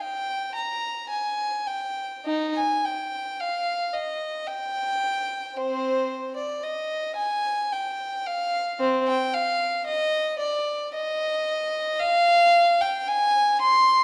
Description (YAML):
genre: classical, baroque-style suite movement for unaccompanied violin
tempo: 56 BPM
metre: 3/4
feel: rubato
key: unclear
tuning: A4 = 440 Hz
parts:
  - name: warm violin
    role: solo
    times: 0.0-14.0 s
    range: C4 to C6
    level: -25 LUFS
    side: equal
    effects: none
room: moderate recital hall reverb, RT60 1.5 s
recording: vinyl crackle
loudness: -25 LUFS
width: mono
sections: 0.0-14.0 A section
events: none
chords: none